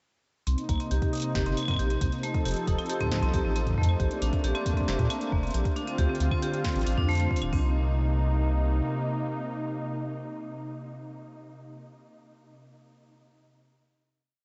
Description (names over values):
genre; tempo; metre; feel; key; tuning
IDM; 136 BPM; 4/4; straight; C dorian; A4 = 440 Hz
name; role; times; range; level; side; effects
warm analog pad; sustained chords; 0.5-11.8 s; C3 to A4; -35 LUFS; equal; chorus
vibraphone with medium hard mallets; arpeggios; 0.5-7.7 s; A3 to C5; -36 LUFS; equal; low-pass filter, delay
round analog bass; bass; 0.5-8.8 s; D1 to Bb2; -29 LUFS; equal; tube saturation
booming analog drum machine; drums; 0.5-7.5 s; claves, hi-hat, snare drum; -41 LUFS; equal; delay
pulsing gated texture; texture; 0.7-7.5 s; C5; -48 LUFS; equal; none
glitchy drum kit; drums; 0.7-7.6 s; hi-hat, kick drum; -31 LUFS; equal; none
room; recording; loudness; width
light reverb, digital ambience; nothing above 7.9 kHz; -28 LUFS; mono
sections
0.5-7.5 groove; 7.5-11.1 final chord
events
filter sweep on vibraphone 0.5-7.5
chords
0.5 Cm7; 2.2 F7; 4.0 Bbmaj7; 5.8 Dm7; 7.5 Cm7